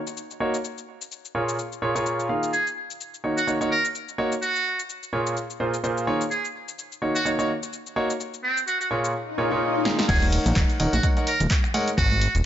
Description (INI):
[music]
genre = piano house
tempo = 127 BPM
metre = 4/4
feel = swing 57% on 16ths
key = Eb dorian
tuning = A4 = 439 Hz
[part]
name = punchy analog drum machine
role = drums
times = 0.1-12.4 s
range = crash cymbal, finger snaps, handclaps, hi-hat, shaker, snare drum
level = -30 LUFS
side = left 2 dB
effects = overdrive
[part]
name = clear concert grand piano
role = riff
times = 0.4-11.9 s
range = Bb2 to Gb5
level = -26 LUFS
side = right 1 dB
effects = sidechain pumping, low-pass filter, ping-pong delay
[part]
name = trumpet with metal mute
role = melody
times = 2.5-12.3 s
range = C4 to Bb4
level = -26 LUFS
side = right 2 dB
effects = ping-pong delay
[part]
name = swell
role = sound effects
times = 9.3-10.1 s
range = none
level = -29 LUFS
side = left 5 dB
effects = none
[part]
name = fat analog bass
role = bass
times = 10.1-12.4 s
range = Eb1 to Bb1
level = -22 LUFS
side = equal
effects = sidechain pumping
[part]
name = electronic kick drum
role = drums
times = 10.1-12.1 s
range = none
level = -23 LUFS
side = equal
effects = overdrive
[part]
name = tambourine and congas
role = percussion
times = 10.1-12.4 s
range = none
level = -32 LUFS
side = right 2 dB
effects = none
[sound]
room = light reverb, digital ambience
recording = nothing above 7.7 kHz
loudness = -22 LUFS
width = side -11 dB against mid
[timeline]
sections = 0.0-10.1 A section; 10.1-12.5 B section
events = filter sweep on drum 0.0-10.1; swell 9.3-10.1; drum fill 9.9; drop 10.1-12.5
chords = 0.0 Ebm7; 0.6 N.C.; 1.3 Bbm7; 2.5 Ebm7; 4.4 N.C.; 5.1 Bbm7; 6.3 Ebm7; 8.2 N.C.; 8.9 Bbm7; 10.1 Ebm7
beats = 0.17 | 0.64 1.11 1.58 2.06 | 2.53 3.00 3.47 3.95 | 4.42 4.89 5.36 5.84 | 6.31 6.78 7.25 7.73 | 8.20 8.67 9.14 9.62 | 10.09 10.56 11.03 11.51 | 11.98